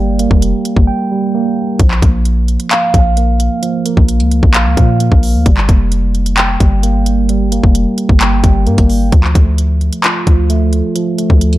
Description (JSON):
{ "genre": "hip hop, trap", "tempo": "131 BPM", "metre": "4/4", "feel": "half-time", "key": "D minor", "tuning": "A4 = 440 Hz", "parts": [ { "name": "mellow tine electric piano", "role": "accompaniment", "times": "0.0-11.6 s", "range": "F3 to G5", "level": "-16 LUFS", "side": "right 2 dB", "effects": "phaser" }, { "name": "warm 808-style bass", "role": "bass", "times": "0.0-11.6 s", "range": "F1 to Bb2", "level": "-13 LUFS", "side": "equal", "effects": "none" }, { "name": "trap drum kit", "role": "drums", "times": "0.2-11.6 s", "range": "handclaps, hi-hat, kick drum", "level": "-11 LUFS", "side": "equal", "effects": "none" } ], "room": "little or no reverb", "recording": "dark, warm production", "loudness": "-10 LUFS", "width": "side -16 dB against mid", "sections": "0.0-9.1 A section; 9.1-11.6 B section", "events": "break 0.9-1.8", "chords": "0.0 Gm; 1.8 Bb5; 5.5 Gm; 9.1 Dm" }